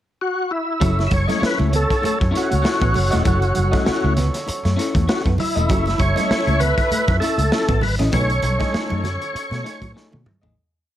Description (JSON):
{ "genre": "funk", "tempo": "98 BPM", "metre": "4/4", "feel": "swing 56% on 16ths", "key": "F# dorian", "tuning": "A4 = 440 Hz", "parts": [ { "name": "overdriven tonewheel organ", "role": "melody", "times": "0.2-9.9 s", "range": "E4 to E5", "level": "-22 LUFS", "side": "equal", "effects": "chorus vibrato, slow rotary speaker" }, { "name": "warm horn section", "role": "second line", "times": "0.8-10.2 s", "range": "C#4 to E5", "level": "-28 LUFS", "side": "right 2 dB", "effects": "none" }, { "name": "electric guitar at the edge of break-up", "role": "accompaniment", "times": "0.8-10.6 s", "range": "A3 to D#5", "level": "-27 LUFS", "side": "left 4 dB", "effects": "none" }, { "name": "semi-hollow electric guitar", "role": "riff", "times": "0.8-10.5 s", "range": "F#3 to C#4", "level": "-28 LUFS", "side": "right 1 dB", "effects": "none" }, { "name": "vintage muted fingered electric bass", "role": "bass", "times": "0.8-10.6 s", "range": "E1 to B2", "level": "-20 LUFS", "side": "equal", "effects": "none" }, { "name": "crunchy breakbeat drum kit", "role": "drums", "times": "0.8-10.6 s", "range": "hi-hat, kick drum, snare drum, toms", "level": "-23 LUFS", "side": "equal", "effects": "none" }, { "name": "congas", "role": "percussion", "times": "0.8-10.4 s", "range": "none", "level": "-30 LUFS", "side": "right 4 dB", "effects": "none" } ], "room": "light reverb, small room ambience", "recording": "none", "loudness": "-17 LUFS", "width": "side -12 dB against mid", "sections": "0.0-0.8 pickup bar; 0.8-10.6 A section", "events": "fade-out 8.1-10.6; drum fill 10.0-10.6", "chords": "0.0 N.C.; 0.8 F#m7; 8.1 B13", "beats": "0.20 | 0.81 1.42 2.03 2.64 | 3.25 3.86 4.47 5.08 | 5.69 6.30 6.91 7.51 | 8.12 8.74 9.35 9.96" }